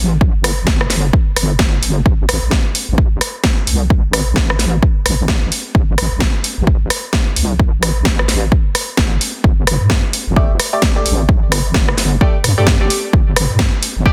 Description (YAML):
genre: bass house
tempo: 130 BPM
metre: 4/4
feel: swing 59% on 16ths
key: unclear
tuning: A4 = 441 Hz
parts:
  - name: wobble bass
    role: bass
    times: 0.0-14.1 s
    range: G1 to G2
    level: -19 LUFS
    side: equal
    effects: chorus, tube saturation, sidechain pumping
  - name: electronic kick drum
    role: drums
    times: 0.2-14.1 s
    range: none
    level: -16 LUFS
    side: equal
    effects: overdrive
  - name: house drum kit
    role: drums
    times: 0.4-13.9 s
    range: hi-hat, rim click, snare drum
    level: -20 LUFS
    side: equal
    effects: none
  - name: band-passed chord stab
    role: stabs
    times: 10.4-14.1 s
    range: A3 to D5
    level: -23 LUFS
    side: equal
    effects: phaser, lush chorus, sidechain pumping, tape echo
room: light reverb, digital ambience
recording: dense, heavily limited modern master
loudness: -15 LUFS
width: mono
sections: 0.0-14.1 A section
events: none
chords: 0.0 Gsus2; 2.1 N.C.; 9.4 Gsus2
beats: | 0.21 0.67 1.13 1.59 | 2.06 2.52 2.98 3.44 | 3.90 4.36 4.83 5.29 | 5.75 6.21 6.67 7.13 | 7.59 8.06 8.52 8.98 | 9.44 9.90 10.36 10.83 | 11.29 11.75 12.21 12.67 | 13.13 13.60 14.06